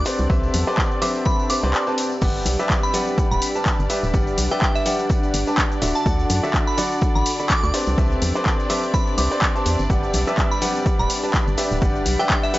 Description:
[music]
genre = piano house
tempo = 125 BPM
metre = 4/4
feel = swing 57% on 16ths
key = G major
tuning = A4 = 440 Hz
[part]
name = glassy synth bell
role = melody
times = 0.0-12.6 s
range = E5 to D6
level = -27 LUFS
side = right 1 dB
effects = chorus, tremolo, analog delay
[part]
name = warm symphonic violin section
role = sustained chords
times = 0.0-12.6 s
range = D4 to D5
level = -32 LUFS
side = equal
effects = sidechain pumping
[part]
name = clear upright piano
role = riff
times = 0.0-12.6 s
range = D3 to B5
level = -24 LUFS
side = equal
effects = sidechain pumping
[part]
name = organ-like FM bass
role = bass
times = 0.0-12.2 s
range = D1 to F#2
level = -23 LUFS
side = equal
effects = sidechain pumping
[part]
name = granular cloud pad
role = texture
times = 0.0-12.6 s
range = C4 to B5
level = -31 LUFS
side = equal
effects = built-in reverb, sidechain pumping
[part]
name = punchy analog drum machine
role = drums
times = 0.1-12.6 s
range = crash cymbal, handclaps, hi-hat, shaker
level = -25 LUFS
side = equal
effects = overdrive
[part]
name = tambourine and congas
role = percussion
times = 0.1-12.6 s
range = none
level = -34 LUFS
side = left 3 dB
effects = none
[part]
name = electronic kick drum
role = drums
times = 0.3-12.4 s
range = none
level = -21 LUFS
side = equal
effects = overdrive
[sound]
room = digital ambience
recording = dry, gritty hardware recording, nothing above 7.7 kHz, faint mains hum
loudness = -18 LUFS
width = side -17 dB against mid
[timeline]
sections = 0.0-12.6 A section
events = none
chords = 0.1 Cmaj7; 2.2 Gmaj7; 5.8 D; 7.7 Cmaj7; 9.9 Gmaj7

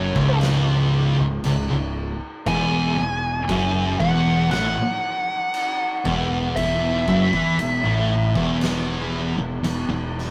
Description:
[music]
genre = stoner and doom metal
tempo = 59 BPM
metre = 4/4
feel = straight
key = unclear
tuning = A4 = 440 Hz
[part]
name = fuzz lead guitar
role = melody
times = 0.0-8.6 s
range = C#5 to G#5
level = -26 LUFS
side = equal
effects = wah, distortion
[part]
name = thick fuzz guitar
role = riff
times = 0.0-10.3 s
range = C#2 to E3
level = -28 LUFS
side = equal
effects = distortion
[part]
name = thick fuzz guitar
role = riff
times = 0.0-10.3 s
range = C#2 to E3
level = -25 LUFS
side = equal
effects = distortion
[part]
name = growling fingered electric bass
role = bass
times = 0.0-10.3 s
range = C#1 to E2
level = -30 LUFS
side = equal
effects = overdrive
[part]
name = oversized low-tuned drum kit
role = drums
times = 0.2-10.3 s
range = crash cymbal, kick drum, snare drum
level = -33 LUFS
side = equal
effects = none
[sound]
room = light reverb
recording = rough rehearsal-room recording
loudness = -22 LUFS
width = mono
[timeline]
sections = 0.0-10.3 A section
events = none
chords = 0.0 N.C.; 2.5 Esus2

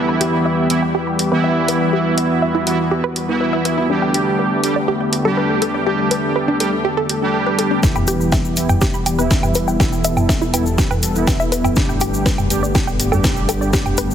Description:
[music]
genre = melodic techno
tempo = 122 BPM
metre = 4/4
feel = straight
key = E minor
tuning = A4 = 440 Hz
[part]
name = warm analog pad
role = sustained chords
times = 0.0-14.1 s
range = D3 to A4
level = -22 LUFS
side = left 2 dB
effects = chorus, sidechain pumping
[part]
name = wide unison pluck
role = arpeggios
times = 0.0-14.1 s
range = D4 to B5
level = -23 LUFS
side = moving between left 6 dB and right 6 dB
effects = auto-pan, sidechain pumping, tape echo
[part]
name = analog synth brass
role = stabs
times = 0.0-14.1 s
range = E3 to G4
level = -19 LUFS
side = right 2 dB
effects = chorus, sidechain pumping, tape echo
[part]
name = overtone-sweeping drone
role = drone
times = 0.0-7.9 s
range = E2 to E3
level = -32 LUFS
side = left 2 dB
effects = chorus, built-in reverb, phaser, sidechain pumping
[part]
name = techno drum kit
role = drums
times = 0.2-14.1 s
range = hi-hat, snare drum, toms, woodblock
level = -21 LUFS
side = right 1 dB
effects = overdrive, sidechain pumping on cymbals, small room ambience, sidechain pumping on hats, sidechain pumping on toms, sidechain pumping on perc
[part]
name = dark detuned saw bass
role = bass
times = 7.8-14.1 s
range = E1 to G1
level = -25 LUFS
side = equal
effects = sidechain pumping
[part]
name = electronic kick drum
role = drums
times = 7.8-13.8 s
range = none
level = -19 LUFS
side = equal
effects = overdrive, small room ambience
[part]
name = egg shaker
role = percussion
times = 7.8-14.1 s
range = none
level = -29 LUFS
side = left 4 dB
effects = none
[sound]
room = moderate lush hall reverb, RT60 2.3 s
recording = heavily compressed radio sound, multiband compression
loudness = -15 LUFS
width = side -9 dB against mid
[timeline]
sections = 0.0-7.8 A section; 7.8-14.1 B section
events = build-up 7.8-14.1; drum fill 7.8-14.1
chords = 0.0 Em; 3.9 Gadd9; 7.8 Em; 11.8 Gadd9

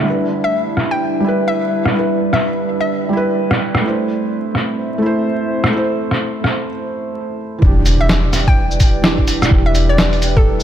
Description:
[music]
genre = future garage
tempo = 127 BPM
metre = 4/4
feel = swing 61% on 16ths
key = E minor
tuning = A4 = 440 Hz
[part]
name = felt-muted upright piano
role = accompaniment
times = 0.0-10.6 s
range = E3 to C5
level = -20 LUFS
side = right 2 dB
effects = sidechain pumping, tape echo
[part]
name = warbly tape-like pad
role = sustained chords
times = 0.0-10.6 s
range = G3 to E5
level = -22 LUFS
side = left 1 dB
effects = chorus, built-in reverb, vintage 12-bit sampler grit, sidechain pumping
[part]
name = hollow square pluck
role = melody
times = 0.4-3.5, 8.0-10.6 s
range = A4 to G5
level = -22 LUFS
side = left 2 dB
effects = chorus, analog delay
[part]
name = lo-fi sampler-style drum kit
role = drums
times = 0.8-10.6 s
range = hi-hat, rim click, shaker, snare drum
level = -17 LUFS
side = equal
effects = low-pass filter on snare, low-pass filter on hats, low-pass filter on perc, low-pass filter on room
[part]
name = soft 808-style bass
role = bass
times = 7.6-10.6 s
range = E1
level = -17 LUFS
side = equal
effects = sidechain pumping
[part]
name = electronic kick drum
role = drums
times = 7.6-10.4 s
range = none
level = -13 LUFS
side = equal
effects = none
[part]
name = impact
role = sound effects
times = 7.6-9.5 s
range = none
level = -25 LUFS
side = left 1 dB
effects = none
[sound]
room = light reverb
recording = vinyl crackle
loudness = -14 LUFS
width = side -10 dB against mid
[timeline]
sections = 0.0-7.6 A section; 7.6-10.6 B section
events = break 6.7-7.6; impact 7.6-9.5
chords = 0.1 G6; 3.8 Am; 7.6 Em7

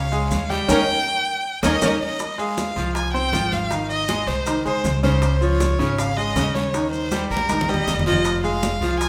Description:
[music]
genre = latin, Cuban son and guajira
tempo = 158 BPM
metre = 4/4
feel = straight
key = unclear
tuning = A4 = 439 Hz
[part]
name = warm violin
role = melody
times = 0.0-9.1 s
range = Bb4 to Ab5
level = -26 LUFS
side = equal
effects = none
[part]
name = clear studio violin section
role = second line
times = 0.0-1.9 s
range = Bb4 to Eb5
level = -29 LUFS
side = equal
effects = none
[part]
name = clear concert grand piano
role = arpeggios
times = 0.0-9.1 s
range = Db3 to C5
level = -26 LUFS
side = equal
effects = none
[part]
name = upright bass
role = bass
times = 0.0-9.1 s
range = F1 to Eb2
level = -28 LUFS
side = equal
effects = none
[part]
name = bongos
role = percussion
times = 0.1-9.1 s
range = none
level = -34 LUFS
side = equal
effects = none
[part]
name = congas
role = percussion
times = 0.1-9.1 s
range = none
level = -31 LUFS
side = equal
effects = none
[part]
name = maracas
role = percussion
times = 0.1-9.1 s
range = none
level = -38 LUFS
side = equal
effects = none
[part]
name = guiro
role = percussion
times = 0.3-9.1 s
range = none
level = -40 LUFS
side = equal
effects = none
[sound]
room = wet large studio reverb, RT60 1.4 s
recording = none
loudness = -21 LUFS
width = mono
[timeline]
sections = 0.0-2.2 A section; 2.2-9.1 B section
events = band accent 0.7-2.2; drum fill 1.6-2.2, 7.1-8.3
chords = 0.0 Bbm7 (rootless); 0.7 Eb7; 2.2 Fm; 3.7 Ab; 5.2 Db; 6.7 Ebadd9; 8.3 Fm

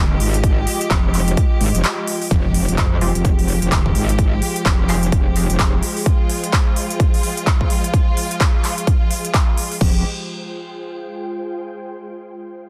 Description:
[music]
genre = bass house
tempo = 128 BPM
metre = 4/4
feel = swing 60% on 16ths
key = F minor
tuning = A4 = 439 Hz
[part]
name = bright studio string section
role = sustained chords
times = 0.0-10.0 s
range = F3 to G4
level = -30 LUFS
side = equal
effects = sidechain pumping
[part]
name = metallic wobble bass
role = bass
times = 0.0-5.8, 9.8-10.0 s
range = Eb1 to F2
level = -21 LUFS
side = equal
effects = distortion, chorus, overdrive, sidechain pumping
[part]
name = ethereal airy pad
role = texture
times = 0.0-11.6 s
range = Ab3 to G5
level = -32 LUFS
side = equal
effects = ensemble chorus, built-in reverb, sidechain pumping
[part]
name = big-room dance drum kit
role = drums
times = 0.2-9.9 s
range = crash cymbal, handclaps, hi-hat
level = -26 LUFS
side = equal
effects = overdrive
[part]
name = electronic kick drum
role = drums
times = 0.4-9.9 s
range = none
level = -19 LUFS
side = equal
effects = none
[part]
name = impact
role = sound effects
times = 2.3-4.2 s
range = none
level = -31 LUFS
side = equal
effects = none
[part]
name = band-passed chord stab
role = stabs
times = 3.0-5.0 s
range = Ab3 to G4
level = -32 LUFS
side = equal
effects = phaser, ensemble chorus, cassette tape, sidechain pumping, digital delay
[sound]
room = light reverb, digital ambience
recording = dense, heavily limited modern master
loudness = -18 LUFS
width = mono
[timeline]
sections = 0.0-2.3 A section; 2.3-9.8 B section; 9.8-11.7 C section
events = drop 0.0-2.3; break 1.8-2.3; fade-out on ambient pad 2.3-9.8; impact 2.3-4.2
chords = 0.0 Fmadd9

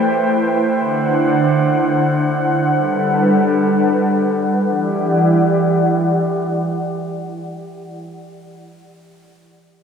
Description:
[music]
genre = hip hop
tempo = free time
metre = none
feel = none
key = E minor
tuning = A4 = 445 Hz
[part]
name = airy breathy pad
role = sustained chords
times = 0.0-7.8 s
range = D3 to G5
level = -15 LUFS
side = equal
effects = chorus, low-pass filter
[sound]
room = moderate digital room reverb, RT60 1.3 s, digital ambience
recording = none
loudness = -14 LUFS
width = side -6 dB against mid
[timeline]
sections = 0.0-4.7 A section; 4.7-8.6 B section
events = filter sweep on analog synth pad 0.0-4.7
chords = 0.0 Am9; 0.8 D7; 2.7 Gmaj7; 4.7 Em9

